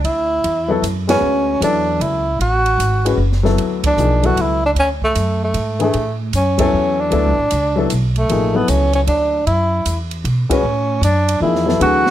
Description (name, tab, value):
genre	modal jazz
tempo	153 BPM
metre	3/4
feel	swing 65% on 8ths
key	D lydian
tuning	A4 = 440 Hz
part	upright bass	bass	0.0-12.1 s	F#1 to B2	-19 LUFS	equal	none
part	open jazz drum kit	drums	0.0-12.1 s	hi-hat, kick drum, ride cymbal, snare drum	-27 LUFS	right 3 dB	none
part	breathy tenor saxophone	melody	0.1-12.1 s	A3 to F#4	-17 LUFS	right 1 dB	none
part	dark baby grand piano	accompaniment	0.7-12.0 s	E3 to B4	-19 LUFS	left 5 dB	none
room	light reverb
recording	none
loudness	-14 LUFS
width	side -12 dB against mid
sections	0.0-12.1 A section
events	band accent 1.0, 3.8, 6.5, 10.4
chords	0.0 Dmaj9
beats	| 0.05 0.44 0.83 | 1.23 1.62 2.01 | 2.40 2.80 3.19 | 3.58 3.98 4.37 | 4.76 5.15 5.55 | 5.94 6.33 6.72 | 7.12 7.51 7.90 | 8.29 8.68 9.07 | 9.46 9.85 10.24 | 10.63 11.02 11.41 | 11.80